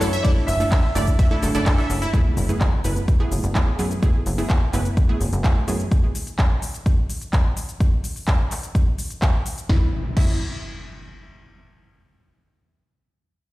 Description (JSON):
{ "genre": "progressive house", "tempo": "127 BPM", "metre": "4/4", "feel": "straight", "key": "F# minor", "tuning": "A4 = 438 Hz", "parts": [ { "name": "warm grand piano", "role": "melody", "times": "0.0-1.1 s", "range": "C#5 to E5", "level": "-27 LUFS", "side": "right 1 dB", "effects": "tape echo" }, { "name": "warm analog pad", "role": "sustained chords", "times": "0.0-2.1 s", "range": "A3 to E4", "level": "-39 LUFS", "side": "left 1 dB", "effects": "none" }, { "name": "wide unison pluck", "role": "arpeggios", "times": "0.0-2.1, 9.7-10.4 s", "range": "E4 to E5", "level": "-30 LUFS", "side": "equal", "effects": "phaser, sidechain pumping, tape echo" }, { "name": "wide unison pluck", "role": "stabs", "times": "0.0-5.8 s", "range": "A3 to D5", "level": "-27 LUFS", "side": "right 2 dB", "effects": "sidechain pumping, tape echo" }, { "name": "plucky analog bass", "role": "bass", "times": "0.0-5.8, 9.7-10.4 s", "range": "F#1 to F#2", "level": "-23 LUFS", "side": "equal", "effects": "sidechain pumping" }, { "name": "big-room dance drum kit", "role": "drums", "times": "0.0-10.3 s", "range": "crash cymbal, handclaps, hi-hat, ride cymbal, shaker, snare drum", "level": "-30 LUFS", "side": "equal", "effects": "overdrive, small room ambience" }, { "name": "electronic kick drum", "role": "drums", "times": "0.2-10.3 s", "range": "none", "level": "-19 LUFS", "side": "equal", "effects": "overdrive, small room ambience" }, { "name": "impact", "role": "sound effects", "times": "2.1-4.0, 9.7-11.6 s", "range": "none", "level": "-28 LUFS", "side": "equal", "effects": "none" } ], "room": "light reverb", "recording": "played on a big sound system in a bare room, large studio reverb", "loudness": "-18 LUFS", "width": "side -18 dB against mid", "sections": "0.0-2.1 A section; 2.1-9.7 B section; 9.7-11.6 C section", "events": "drop 0.0-2.1; impact 2.1-4.0", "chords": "0.0 Dsus2/F#; 2.1 F#m11; 9.7 Esus2/F#", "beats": "| 0.24 0.72 1.19 1.66 | 2.13 2.61 3.08 3.55 | 4.03 4.50 4.97 5.44 | 5.92 6.39 6.86 7.33 | 7.80 8.28 8.75 9.22 | 9.69 10.17 10.64 11.11" }